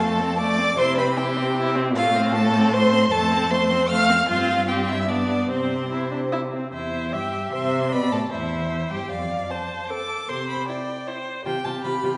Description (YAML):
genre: quick classical-period movement for string quartet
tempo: 153 BPM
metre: 3/4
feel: straight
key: C major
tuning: A4 = 440 Hz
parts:
  - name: rich violin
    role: melody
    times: 0.0-12.2 s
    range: C5 to F6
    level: -29 LUFS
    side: equal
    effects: none
  - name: rich violin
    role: second line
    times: 0.0-12.1 s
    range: C4 to F5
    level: -28 LUFS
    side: equal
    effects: none
  - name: rich viola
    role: accompaniment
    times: 0.0-12.2 s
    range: A3 to E5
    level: -29 LUFS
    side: equal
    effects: none
  - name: rich cello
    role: bass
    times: 0.0-12.1 s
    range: E2 to C3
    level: -28 LUFS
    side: equal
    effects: none
room: wet recital hall reverb, RT60 1.8 s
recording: recorded in a church or concert hall, nothing above 10.5 kHz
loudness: -23 LUFS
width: mono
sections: 0.0-6.7 A section; 6.7-12.2 A section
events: none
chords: 0.0 F; 0.8 C; 2.0 F/A; 3.1 F; 4.3 C5/G; 5.1 G; 5.5 C; 6.7 C/E; 7.9 Am; 9.1 F; 10.3 C5; 11.5 G7/C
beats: 0.00 0.39 | 0.78 1.18 1.56 | 1.96 2.35 2.73 | 3.12 3.51 3.90 | 4.29 4.68 5.08 | 5.49 5.91 6.32 | 6.73 7.13 7.52 | 7.92 8.31 8.71 | 9.10 9.50 9.89 | 10.29 10.68 11.07 | 11.45 11.84